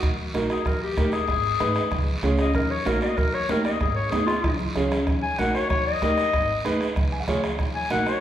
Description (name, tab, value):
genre	latin, cumbia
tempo	190 BPM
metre	4/4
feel	straight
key	Eb minor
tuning	A4 = 440 Hz
part	upright bass	bass	0.0-8.0 s	Ab1 to Ab2	-30 LUFS	equal	none
part	bombo	percussion	0.0-8.2 s	none	-28 LUFS	right 1 dB	none
part	congas	percussion	0.0-8.1 s	none	-31 LUFS	equal	none
part	guiro	percussion	0.0-8.2 s	none	-36 LUFS	right 1 dB	none
part	warm upright piano	accompaniment	0.3-8.1 s	Bb3 to Ab5	-27 LUFS	right 2 dB	none
part	warm clarinet	melody	0.5-8.2 s	F4 to Ab5	-26 LUFS	left 4 dB	none
room	wet recital hall reverb, RT60 1.4 s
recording	recorded in a church or concert hall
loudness	-21 LUFS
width	side -11 dB against mid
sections	0.0-8.2 A section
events	clarinet solo 0.0-8.2; drum fill 4.1-5.1; upright piano fill 7.0-7.6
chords	0.0 Ebm; 0.7 Eb; 1.3 Abm; 1.9 Db; 2.6 Ebm; 3.2 Eb; 3.8 Abm; 4.4 Db; 5.1 Ebm; 5.7 Eb; 6.3 Abm; 7.0 Db; 7.6 Ebm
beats	| 0.03 0.34 0.66 0.97 | 1.29 1.60 1.92 2.24 | 2.55 2.87 3.18 3.50 | 3.81 4.13 4.44 4.76 | 5.07 5.39 5.70 6.02 | 6.33 6.65 6.96 7.28 | 7.59 7.91